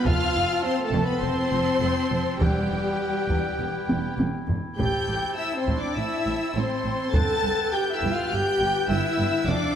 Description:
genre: cinematic, epic orchestral film score.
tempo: 102 BPM.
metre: 4/4.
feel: straight.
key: unclear.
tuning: A4 = 440 Hz.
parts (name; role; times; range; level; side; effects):
warm symphonic violin section; melody; 0.0-9.8 s; G5 to A6; -32 LUFS; left 2 dB; none.
warm symphonic violin section; second line; 0.0-9.8 s; G4 to A5; -30 LUFS; left 3 dB; none.
warm symphonic viola section; accompaniment; 0.0-9.8 s; G3 to A4; -30 LUFS; equal; none.
dark French horn section; sustained chords; 0.0-9.8 s; G3 to A4; -30 LUFS; left 3 dB; none.
warm woodwind section; sustained chords; 0.0-9.8 s; B3 to A5; -33 LUFS; right 2 dB; none.
warm symphonic cello section; bass; 0.1-9.6 s; E2 to A2; -32 LUFS; right 3 dB; none.
warm symphonic double bass section; bass; 0.1-9.5 s; E1 to A1; -32 LUFS; right 3 dB; none.
taiko ensemble; drums; 0.1-9.8 s; none; -28 LUFS; equal; none.
timpani; percussion; 2.4-3.3 s; E2; -34 LUFS; equal; none.
room: wet scoring stage reverb, RT60 1.9 s.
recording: none.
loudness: -22 LUFS.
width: side -9 dB against mid.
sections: 0.0-9.8 A section.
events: drum fill 3.9-4.8.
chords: 0.1 F; 2.4 Em; 4.8 Am; 7.1 G.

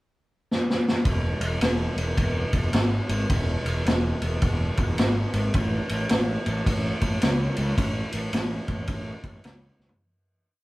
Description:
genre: blues rock power trio and southern rock.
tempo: 107 BPM.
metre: 4/4.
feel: swing 64% on 8ths.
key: E major.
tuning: A4 = 441 Hz.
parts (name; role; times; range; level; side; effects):
vintage drum kit; drums; 0.5-10.0 s; kick drum, ride cymbal, snare drum, toms; -24 LUFS; equal; none.
fuzz picked electric bass; bass; 1.1-9.9 s; E1 to C#2; -26 LUFS; equal; overdrive.
room: light reverb.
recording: band playing live in one room.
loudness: -22 LUFS.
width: side -19 dB against mid.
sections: 0.0-1.1 pickup bar; 1.1-10.0 riff.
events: drum fill 0.5-1.1, 9.7; fade-out 7.8-10.0.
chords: none.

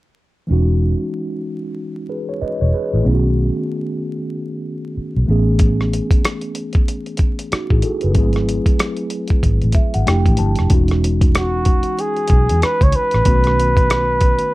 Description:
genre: R&B, neo-soul.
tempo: 94 BPM.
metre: 4/4.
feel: swing 61% on 16ths.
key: E major.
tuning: A4 = 440 Hz.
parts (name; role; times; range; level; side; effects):
mellow tine electric piano; accompaniment; 0.5-14.5 s; D#3 to A5; -22 LUFS; equal; medium stereo tremolo.
vintage muted fingered electric bass; bass; 0.5-14.4 s; E1 to E2; -17 LUFS; equal; none.
dusty soul sampler-style drum kit; drums; 5.6-14.5 s; hi-hat, kick drum, rim click; -16 LUFS; equal; none.
breathy flugelhorn; melody; 11.4-14.5 s; F#4 to C#5; -17 LUFS; right 1 dB; none.
room: little or no reverb.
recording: vinyl crackle.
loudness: -14 LUFS.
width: side -19 dB against mid.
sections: 0.5-10.7 A section; 10.7-14.5 B section.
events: tine electric piano fill 9.4-10.7.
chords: 0.5 Emaj13; 3.0 B9; 5.3 Amaj9; 8.2 G#7b9b13; 10.1 Fmaj13; 10.7 Emaj13; 13.3 B9.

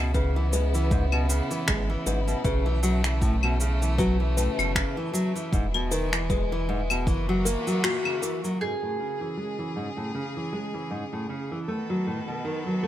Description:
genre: folktronica.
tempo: 78 BPM.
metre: 4/4.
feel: swing 56% on 16ths.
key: B mixolydian.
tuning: A4 = 440 Hz.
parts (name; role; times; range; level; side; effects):
clear string quartet; sustained chords; 0.0-12.9 s; C#3 to A4; -34 LUFS; right 1 dB; vintage 12-bit sampler grit.
nylon-string guitar; arpeggios; 0.0-12.9 s; G#2 to A#3; -29 LUFS; equal; low-pass filter, tape echo.
warm sub bass; bass; 0.0-7.6 s; E1 to C#2; -26 LUFS; equal; none.
music box; second line; 0.1-8.6 s; F#4 to B4; -33 LUFS; left 5 dB; vintage 12-bit sampler grit, tape echo.
electronic kick drum; drums; 0.1-7.2 s; none; -27 LUFS; equal; none.
electronic shaker, claves and finger snaps; drums; 0.1-8.6 s; none; -29 LUFS; left 1 dB; none.
mandolin; melody; 8.6-11.3 s; G#4; -32 LUFS; right 3 dB; tape echo.
room: light reverb, small room ambience.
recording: none.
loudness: -24 LUFS.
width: side -12 dB against mid.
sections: 0.0-8.6 A section; 8.6-12.9 B section.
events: band accent 7.8-8.2; filter sweep on nylon-string guitar 8.6-12.9.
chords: 0.0 C#m7; 2.5 B9sus4; 5.5 Emaj7; 7.1 F#7; 8.6 Amaj7; 11.7 B7.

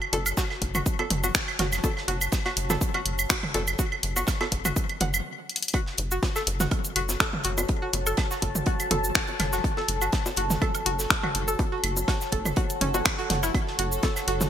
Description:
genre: minimal techno.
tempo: 123 BPM.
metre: 4/4.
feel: swing 54% on 16ths.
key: F# minor.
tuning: A4 = 438 Hz.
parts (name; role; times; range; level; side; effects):
electronic claves, bongos, woodblock and toms; percussion; 0.0-14.5 s; none; -30 LUFS; right 1 dB; overdrive, small room ambience, gated reverb, ping-pong delay.
deep dark ambient pad; texture; 0.0-14.5 s; F#4 to A5; -34 LUFS; left 1 dB; chorus, built-in reverb, sidechain pumping.
string-like resonator pluck; riff; 0.1-14.3 s; C#4 to F#5; -32 LUFS; equal; chorus, sidechain pumping, ping-pong delay.
rubbery square bass; bass; 0.1-14.5 s; F#1; -31 LUFS; equal; sidechain pumping.
house drum kit; drums; 0.1-14.5 s; cabasa, finger snaps, hi-hat; -27 LUFS; left 1 dB; small room ambience, gated reverb.
tight metal drum kit; drums; 0.1-14.5 s; hi-hat, snare drum; -36 LUFS; right 2 dB; sidechain pumping on hats, high-pass filter on hats, small room ambience, high-pass filter on snare, high-pass filter on room, gated reverb.
electronic kick drum; drums; 0.4-14.1 s; none; -27 LUFS; equal; small room ambience.
pulsing gated texture; texture; 6.9-14.5 s; A4; -39 LUFS; right 4 dB; chorus, built-in reverb, sidechain pumping.
room: light reverb, digital ambience.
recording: bright 1980s-style digital production.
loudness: -23 LUFS.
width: side -10 dB against mid.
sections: 0.0-5.7 A section; 5.7-14.5 B section.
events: stop 5.3-5.7; drum fill 5.5; drop 5.7-14.5.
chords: 0.0 F#m.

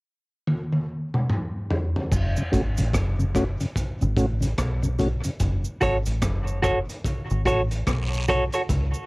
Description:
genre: dub reggae.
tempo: 73 BPM.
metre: 4/4.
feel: swing 61% on 16ths.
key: F# minor.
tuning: A4 = 437 Hz.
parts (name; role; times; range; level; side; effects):
crunchy breakbeat drum kit; drums; 0.5-8.9 s; crash cymbal, hi-hat, kick drum, rim click, toms; -26 LUFS; equal; cassette tape.
deep dub fingered electric bass; bass; 2.1-8.9 s; F#1 to C#2; -24 LUFS; equal; none.
cabasa and guiro; percussion; 2.1-9.1 s; none; -38 LUFS; right 2 dB; none.
mellow tonewheel organ; accompaniment; 2.4-5.3 s; F#2 to F#4; -23 LUFS; equal; slow rotary speaker, low-pass filter, cassette tape.
semi-hollow electric guitar; accompaniment; 5.8-8.6 s; F#4 to C#5; -24 LUFS; right 1 dB; tremolo, low-pass filter, cassette tape, dub echo.
room: light reverb.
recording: home recording on cassette.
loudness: -22 LUFS.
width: side -24 dB against mid.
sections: 0.0-2.1 A section; 2.1-5.4 B section; 5.4-9.1 C section.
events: drum fill 0.5-2.1; filter sweep 2.1-5.4.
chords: 0.0 N.C.; 2.1 F#m.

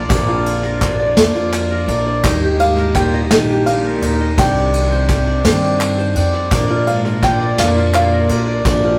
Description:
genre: indie folk with a building arrangement.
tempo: 56 BPM (dotted quarters).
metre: 6/8.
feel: straight.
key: unclear.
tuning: A4 = 440 Hz.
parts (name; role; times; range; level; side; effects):
bluegrass banjo; melody; 0.0-9.0 s; D5 to G5; -23 LUFS; equal; none.
warm cello; second line; 0.0-9.0 s; F2 to C3; -27 LUFS; equal; none.
picked steel-string acoustic guitar; accompaniment; 0.0-9.0 s; Bb2 to Bb4; -27 LUFS; equal; none.
rich chamber string section; sustained chords; 0.0-9.0 s; Eb3 to D5; -29 LUFS; equal; none.
qanun; arpeggios; 0.0-9.0 s; D4 to Eb5; -22 LUFS; equal; none.
upright bass; bass; 0.0-9.0 s; Bb1 to G2; -22 LUFS; equal; none.
soft brush drum kit; drums; 0.1-8.8 s; kick drum, ride cymbal, snare drum; -22 LUFS; equal; none.
group handclap; percussion; 0.1-8.8 s; none; -28 LUFS; equal; none.
tambourine; percussion; 0.1-8.8 s; none; -41 LUFS; equal; none.
room: moderate studio reverb, RT60 0.6 s.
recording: rough rehearsal-room recording, warm saturation.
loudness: -15 LUFS.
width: mono.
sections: 0.0-9.0 A section.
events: none.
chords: 0.0 Bb; 2.2 Eb; 4.4 Cmadd9; 6.5 Bb.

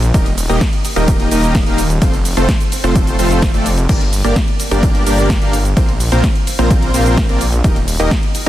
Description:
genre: EDM, festival progressive house.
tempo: 128 BPM.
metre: 4/4.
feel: straight.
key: unclear.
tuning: A4 = 440 Hz.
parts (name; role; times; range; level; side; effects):
detuned saw bass; bass; 0.0-8.5 s; Eb1 to Bb1; -16 LUFS; equal; sidechain pumping.
house drum kit; drums; 0.0-8.5 s; cabasa, crash cymbal, hi-hat, ride cymbal, snare drum; -22 LUFS; equal; none.
dense compressed supersaw; riff; 0.1-8.5 s; A3 to F5; -17 LUFS; equal; sidechain pumping, digital delay.
electronic kick drum; drums; 0.1-8.2 s; none; -15 LUFS; equal; overdrive.
room: digital ambience.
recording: dense, heavily limited modern master.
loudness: -12 LUFS.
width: side -13 dB against mid.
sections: 0.0-8.5 A section.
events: none.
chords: 0.1 Eb; 2.0 F; 3.9 Gm; 5.8 Bbsus2; 7.6 Eb.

